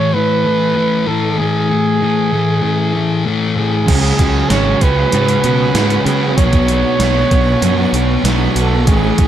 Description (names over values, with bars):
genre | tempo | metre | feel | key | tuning
rock, shoegaze and dream pop | 96 BPM | 4/4 | straight | unclear | A4 = 439 Hz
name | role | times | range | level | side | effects
breathy flugelhorn | melody | 0.0-9.3 s | G#4 to C#5 | -18 LUFS | right 4 dB | tape echo
thick fuzz guitar | riff | 0.0-9.3 s | A2 to C#4 | -16 LUFS | left 4 dB | distortion, wide subtle chorus
shimmering ambient pad | sustained chords | 5.1-9.3 s | A3 to C#6 | -28 LUFS | right 3 dB | chorus, built-in reverb
overdriven semi-hollow guitar | riff | 3.9-9.3 s | A2 to G#4 | -21 LUFS | right 13 dB | reverse reverb
fuzz fingered electric bass | bass | 3.9-9.3 s | G#1 to C#3 | -17 LUFS | right 1 dB | overdrive
gated 80s digital drum machine | drums | 3.9-9.3 s | crash cymbal, hi-hat, kick drum, snare drum | -16 LUFS | right 1 dB | gated reverb, gated reverb snare, overdrive
room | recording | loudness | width
digital ambience | dark, warm production | -12 LUFS | side -10 dB against mid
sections
0.0-9.3 A section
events
none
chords
0.0 Amaj7(no3); 3.9 C#sus4; 6.4 Bmadd9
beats
0.14 0.76 | 1.38 2.01 2.63 3.25 | 3.88 4.50 5.12 5.75 | 6.37 7.00 7.62 8.24 | 8.87